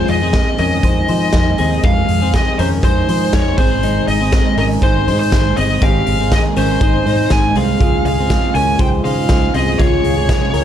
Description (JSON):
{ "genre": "jangly indie pop", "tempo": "120 BPM", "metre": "4/4", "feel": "straight", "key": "unclear", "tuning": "A4 = 439 Hz", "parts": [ { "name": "bluesy overdriven lead guitar", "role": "melody", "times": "0.0-10.6 s", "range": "C5 to Ab5", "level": "-19 LUFS", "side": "right 1 dB", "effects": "distortion" }, { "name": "electric guitar through a small old amp", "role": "accompaniment", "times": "0.0-10.6 s", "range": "F2 to Ab4", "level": "-22 LUFS", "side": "right 5 dB", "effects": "warbly pitch drift" }, { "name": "twelve-string electric guitar", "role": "arpeggios", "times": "0.0-10.6 s", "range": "C3 to C5", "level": "-20 LUFS", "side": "left 8 dB", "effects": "none" }, { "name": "fingered electric bass", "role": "bass", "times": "0.0-10.6 s", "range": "G1 to F3", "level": "-19 LUFS", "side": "equal", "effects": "none" }, { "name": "raw garage drum kit", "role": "drums", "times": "0.1-10.6 s", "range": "hi-hat, kick drum, snare drum", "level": "-17 LUFS", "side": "equal", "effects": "none" }, { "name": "warbly lo-fi synth keys", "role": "accompaniment", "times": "7.8-10.6 s", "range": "Db4 to Ab4", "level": "-24 LUFS", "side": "right 4 dB", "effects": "chorus, phaser" } ], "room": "small room ambience", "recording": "dark, warm production", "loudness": "-12 LUFS", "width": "side -10 dB against mid", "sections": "0.0-10.6 A section", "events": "none", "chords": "0.0 Fm7; 3.6 Ab; 7.8 Db" }